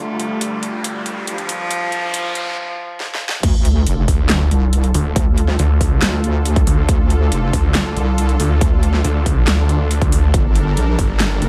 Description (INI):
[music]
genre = heavy wobble dubstep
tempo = 139 BPM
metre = 4/4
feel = half-time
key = D minor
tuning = A4 = 439 Hz
[part]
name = rich cello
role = melody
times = 0.0-3.3 s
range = F3 to A3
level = -26 LUFS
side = equal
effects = dub echo
[part]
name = supersaw pad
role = sustained chords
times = 0.0-11.5 s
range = D2 to Bb4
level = -29 LUFS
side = equal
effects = sidechain pumping
[part]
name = riser and sub drop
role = sound effects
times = 0.0-5.2 s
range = none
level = -28 LUFS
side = equal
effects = none
[part]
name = dubstep drum kit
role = drums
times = 0.2-11.5 s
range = crash cymbal, handclaps, hi-hat, snare drum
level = -24 LUFS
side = equal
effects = high-pass filter on hats, high-pass filter on snare, high-pass filter on cymbals
[part]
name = wobble bass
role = bass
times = 3.4-11.5 s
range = F1 to D2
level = -18 LUFS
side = equal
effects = chorus, overdrive
[part]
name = electronic kick drum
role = drums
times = 3.4-11.1 s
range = none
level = -20 LUFS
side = equal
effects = overdrive
[part]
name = snarling distorted saw bass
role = bass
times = 4.1-11.4 s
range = G1 to D2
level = -18 LUFS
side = equal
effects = distortion, overdrive
[sound]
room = little or no reverb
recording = high-pass filter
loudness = -17 LUFS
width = mono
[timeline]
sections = 0.0-3.4 A section; 3.4-11.5 B section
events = build-up 0.0-3.4; riser 0.0-2.6; filter sweep 0.0-3.4; break 2.6-3.4; drum fill 3.0-3.4; drop 3.4-11.5; impact 3.4-5.2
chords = 0.0 Dm; 10.3 Gmadd9